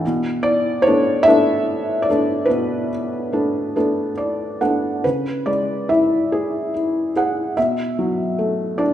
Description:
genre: classical, lyrical solo piano.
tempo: 48 BPM (dotted quarters).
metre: 6/8.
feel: uneven beats, rubato.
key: unclear.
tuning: A4 = 436 Hz.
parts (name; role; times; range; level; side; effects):
felt-muted upright piano; solo; 0.0-8.9 s; B2 to F#5; -17 LUFS; equal; none.
room: wet recital hall reverb, RT60 1.4 s.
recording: recorded in a church or concert hall.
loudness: -17 LUFS.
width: side -11 dB against mid.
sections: 0.0-5.0 A section; 5.0-8.9 B section.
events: felt piano fill 3.8-5.0.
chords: 0.0 Bm7; 5.0 C#m; 7.6 Bm7.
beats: | 0.03 1.27 | 2.49 3.75 | 5.04 6.32 | 7.57 8.78.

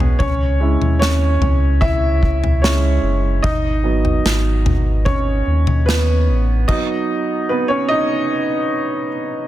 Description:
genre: pop ballad.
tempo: 74 BPM.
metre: 4/4.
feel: straight.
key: C# minor.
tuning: A4 = 440 Hz.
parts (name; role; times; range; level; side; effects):
warm baby grand piano; accompaniment; 0.0-9.5 s; F#3 to E5; -19 LUFS; right 1 dB; none.
sub bass with octave; bass; 0.0-6.7 s; F#1 to D#2; -16 LUFS; equal; none.
unplugged drum kit; drums; 0.0-6.9 s; crash cymbal, kick drum, snare drum, toms; -20 LUFS; left 1 dB; none.
room: light reverb, studio ambience.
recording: dense, heavily limited modern master.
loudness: -15 LUFS.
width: side -13 dB against mid.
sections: 0.0-9.5 A section.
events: grand piano solo 0.0-9.5; stop 6.7-9.5.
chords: 0.2 C#m; 3.4 G#m7; 6.7 B.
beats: | 0.20 1.01 1.82 2.63 | 3.44 4.25 5.06 5.87 | 6.68 7.49 8.30 9.12.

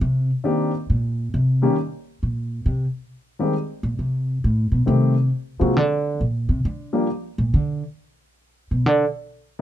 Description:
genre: jazz.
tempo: 135 BPM.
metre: 4/4.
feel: swing 68% on 8ths.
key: unclear.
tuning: A4 = 440 Hz.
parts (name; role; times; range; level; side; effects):
upright bass; bass; 0.0-9.0 s; A2 to D3; -20 LUFS; equal; none.
warm grand piano; melody; 0.4-7.1 s; Eb3 to G4; -21 LUFS; left 2 dB; none.
room: light reverb.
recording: faint mains hum.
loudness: -20 LUFS.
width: side -12 dB against mid.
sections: 0.0-9.6 A section.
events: upright bass solo 0.0-9.6.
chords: 0.0 Cm9; 0.9 N.C.; 4.4 Am7b5; 5.3 N.C.; 6.2 Gm (rootless); 8.0 G (rootless).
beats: 0.43 | 0.88 1.32 1.76 2.20 | 2.65 3.09 3.53 3.98 | 4.42 4.86 5.30 5.75 | 6.19 6.63 7.08 7.52 | 7.96 8.41 8.85.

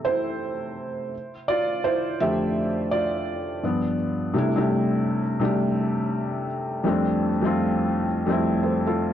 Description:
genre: hip hop.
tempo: 84 BPM.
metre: 4/4.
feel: swing 65% on 16ths.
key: C major.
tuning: A4 = 440 Hz.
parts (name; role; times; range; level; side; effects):
felt-muted upright piano; solo; 0.0-9.1 s; F2 to E5; -22 LUFS; equal; low-pass filter.
room: moderate spring reverb, RT60 1.8 s, studio ambience.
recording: dry, gritty hardware recording.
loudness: -22 LUFS.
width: side -10 dB against mid.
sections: 0.0-4.3 A section; 4.3-9.1 B section.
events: felt piano solo 0.0-4.3.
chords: 0.0 C6; 1.1 F69; 3.6 G7; 4.3 C69; 6.8 F69.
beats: 0.05 0.77 | 1.48 2.20 2.91 3.62 | 4.34 5.05 5.77 6.48 | 7.20 7.91 8.62.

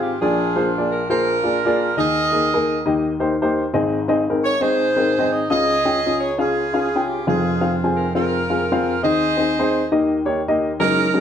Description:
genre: gospel.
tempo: 136 BPM.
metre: 4/4.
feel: swing 58% on 8ths.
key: Ab major.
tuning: A4 = 440 Hz.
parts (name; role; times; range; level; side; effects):
bright saxophone section; melody; 0.0-11.2 s; C4 to Eb5; -20 LUFS; right 2 dB; plate reverb.
dark baby grand piano; accompaniment; 0.0-11.2 s; F1 to Ab5; -19 LUFS; left 2 dB; none.
room: moderate large studio reverb, RT60 0.8 s.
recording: none.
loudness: -17 LUFS.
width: side -8 dB against mid.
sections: 0.0-10.8 A section.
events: none.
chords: 0.2 Bb7; 2.0 Ebsus4; 2.9 Eb; 3.7 Ab; 5.5 Db; 7.3 Fm; 9.0 Ab/Eb; 9.9 Eb.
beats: | 0.22 0.66 1.10 1.54 | 1.98 2.42 2.86 3.30 | 3.74 4.18 4.62 5.06 | 5.50 5.94 6.38 6.82 | 7.26 7.71 8.15 8.59 | 9.03 9.47 9.92 10.36 | 10.80.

